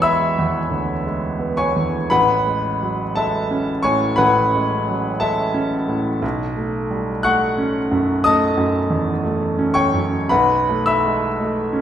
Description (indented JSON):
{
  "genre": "classical, impressionist solo piano",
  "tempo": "58 BPM",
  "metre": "4/4",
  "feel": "rubato",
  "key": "A major",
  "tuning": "A4 = 440 Hz",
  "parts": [
    { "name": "clear concert grand piano", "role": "solo", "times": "0.0-11.8 s", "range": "A1 to F#6", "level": "-17 LUFS", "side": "equal", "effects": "none" }
  ],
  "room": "wet recital hall reverb, RT60 1.4 s",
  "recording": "recorded in a church or concert hall",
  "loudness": "-17 LUFS",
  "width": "side -10 dB against mid",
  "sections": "0.0-11.8 A section",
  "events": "none",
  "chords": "0.0 Amaj9; 2.1 F#madd9/A; 6.2 B9; 10.3 Amaj7sus2/B"
}